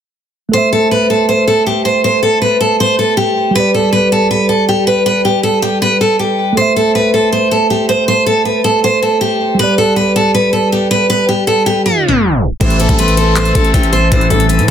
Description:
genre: hip hop, trap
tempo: 159 BPM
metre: 4/4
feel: half-time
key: A minor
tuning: A4 = 440 Hz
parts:
  - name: picked steel-string acoustic guitar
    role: melody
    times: 0.5-14.7 s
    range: G4 to C5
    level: -11 LUFS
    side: equal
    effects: tape echo
  - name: mellow tine electric piano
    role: accompaniment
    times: 0.5-14.7 s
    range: G3 to E5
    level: -17 LUFS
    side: right 2 dB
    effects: none
  - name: reverse cymbal and downlifter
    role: sound effects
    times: 11.9-14.7 s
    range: none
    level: -24 LUFS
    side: right 1 dB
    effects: none
  - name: mellow woodwind section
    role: sustained chords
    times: 12.6-14.7 s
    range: E3 to A4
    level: -21 LUFS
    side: left 6 dB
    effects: none
  - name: resonant sweep polysynth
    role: stabs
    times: 12.6-14.5 s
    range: C2 to E3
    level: -18 LUFS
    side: equal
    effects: chorus, phaser
  - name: growling 808-style bass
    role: bass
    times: 12.6-14.7 s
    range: A1 to A2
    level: -14 LUFS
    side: left 1 dB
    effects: none
  - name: trap drum kit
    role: drums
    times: 12.6-14.7 s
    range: handclaps, hi-hat, kick drum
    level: -14 LUFS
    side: left 1 dB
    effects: none
  - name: breathy hollow jazz flute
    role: second line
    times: 13.0-13.7 s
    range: C6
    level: -24 LUFS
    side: left 10 dB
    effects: tape echo
room: light reverb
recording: dense, heavily limited modern master, tape stop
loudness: -10 LUFS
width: side -8 dB against mid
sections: 0.5-12.6 A section; 12.6-14.7 B section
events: tape stop 11.9-12.6; reverse cymbal 11.9-12.6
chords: 0.5 Am; 3.6 G; 6.6 Am; 9.6 G; 12.6 Am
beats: | 0.53 0.91 1.29 1.66 | 2.04 2.42 2.80 3.17 | 3.55 3.93 4.31 4.68 | 5.06 5.44 5.82 6.19 | 6.57 6.95 7.33 7.70 | 8.08 8.46 8.83 9.21 | 9.59 9.97 10.34 10.72 | 11.10 11.48 11.85 12.23 | 12.61 12.98 13.36 13.74 | 14.12 14.49

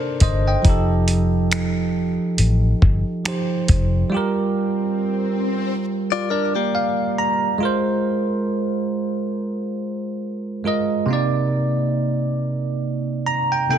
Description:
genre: contemporary R&B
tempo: 69 BPM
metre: 4/4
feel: swing 58% on 16ths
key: unclear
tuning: A4 = 443 Hz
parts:
  - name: bell-like tine electric piano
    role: accompaniment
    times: 0.0-13.8 s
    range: C3 to Bb5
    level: -20 LUFS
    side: right 2 dB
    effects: wide subtle chorus
  - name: direct-recorded clean electric guitar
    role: arpeggios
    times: 0.0-0.6, 6.1-7.6 s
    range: Bb3 to D5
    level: -24 LUFS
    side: left 12 dB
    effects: ping-pong delay
  - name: vintage muted fingered electric bass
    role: bass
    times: 0.2-4.0 s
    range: F1 to A1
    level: -20 LUFS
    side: left 1 dB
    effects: none
  - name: dusty soul sampler-style drum kit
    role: drums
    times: 0.2-3.9 s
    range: finger snaps, hi-hat, kick drum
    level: -18 LUFS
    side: equal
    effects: soft clipping on snare
  - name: swell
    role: sound effects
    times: 4.8-5.9 s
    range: none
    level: -30 LUFS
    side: left 8 dB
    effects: none
room: light reverb, digital ambience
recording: dense, heavily limited modern master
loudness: -18 LUFS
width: side -9 dB against mid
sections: 0.0-7.6 A section; 7.6-13.8 B section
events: break 4.1-7.6; swell 4.8-7.6; tine electric piano fill 5.9-7.6, 12.8-13.8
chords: 0.0 Cm9; 0.6 F9; 4.1 Gm7; 7.6 Ab69; 11.1 Cm9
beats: | 0.65 1.52 2.39 3.26 | 4.13 5.00 5.87 6.74 | 7.61 8.47 9.34 10.21 | 11.08 11.95 12.82 13.69

